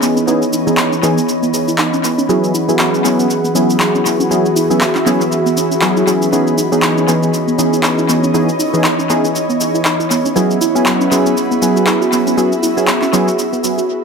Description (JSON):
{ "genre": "deep house", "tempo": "119 BPM", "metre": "4/4", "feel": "swing 57% on 16ths", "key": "unclear", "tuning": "A4 = 440 Hz", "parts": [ { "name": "airy breathy pad", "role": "sustained chords", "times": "0.0-13.9 s", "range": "E3 to B5", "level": "-21 LUFS", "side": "equal", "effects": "chorus" }, { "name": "soft round pluck", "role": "arpeggios", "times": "0.0-13.8 s", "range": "B3 to G#4", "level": "-20 LUFS", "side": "right 2 dB", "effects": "chorus, dub echo" }, { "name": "warm analog keys", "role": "stabs", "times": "0.0-13.3 s", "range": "E3 to G#4", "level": "-15 LUFS", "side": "equal", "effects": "chorus, low-pass filter, analog delay" }, { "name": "electronic shaker and handclaps", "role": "drums", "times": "0.0-13.9 s", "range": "none", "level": "-19 LUFS", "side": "equal", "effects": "studio reverb, analog delay" }, { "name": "ethereal airy pad", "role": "texture", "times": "0.0-13.9 s", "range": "B3 to E5", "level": "-20 LUFS", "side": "equal", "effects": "ensemble chorus, built-in reverb" } ], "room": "wet spring reverb, RT60 1.3 s", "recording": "echo-heavy mix", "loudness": "-12 LUFS", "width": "side -5 dB against mid", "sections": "0.0-14.0 A section", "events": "filter sweep on analog synth pad 0.0-14.0; filter sweep on synth arpeggio sound 0.0-14.0; break 13.9", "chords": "0.0 C#m9; 2.3 F#9sus4; 6.3 C#m9; 10.4 F#9sus4" }